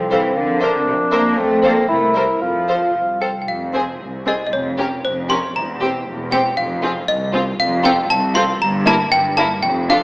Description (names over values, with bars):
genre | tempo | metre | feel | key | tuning
cinematic | 117 BPM | 2/4 | straight | F major, F minor from 3.5 s | A4 = 440 Hz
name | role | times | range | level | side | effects
mellow bassoon | accompaniment | 0.0-3.2 s | Bb3 to F4 | -19 LUFS | equal | none
mellow French horn section | sustained chords | 0.0-3.3 s | C4 to Bb4 | -22 LUFS | left 1 dB | none
rich studio cello section | bass | 0.0-10.0 s | C2 to Bb3 | -23 LUFS | equal | none
warm studio double bass section | bass | 0.0-10.0 s | E1 to F2 | -29 LUFS | equal | none
rich studio violin section | melody | 0.1-10.0 s | Ab4 to F5 | -29 LUFS | left 1 dB | none
rich studio violin section | second line | 0.1-10.0 s | E4 to C5 | -23 LUFS | left 1 dB | none
rich studio viola section | accompaniment | 0.1-10.0 s | Bb3 to Bb4 | -25 LUFS | equal | none
trough xylophone with plastic mallets | melody | 3.2-10.0 s | C5 to C6 | -18 LUFS | equal | none
room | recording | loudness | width
wet scoring stage reverb, RT60 1.6 s | small speaker sound | -15 LUFS | side -25 dB against mid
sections
0.0-3.5 A section; 3.5-10.0 B section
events
none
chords
0.4 C7(no3)/F; 1.4 F; 1.9 C7; 2.4 F; 3.5 F5; 4.5 G7(b5, no3)/F (rootless); 5.6 C7/E; 6.6 F5; 8.6 Edim/G (rootless)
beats
| 0.37 0.87 | 1.38 1.90 | 2.42 2.95 | 3.48 4.00 | 4.52 5.04 | 5.55 6.07 | 6.58 7.08 | 7.59 8.10 | 8.61 9.12 | 9.63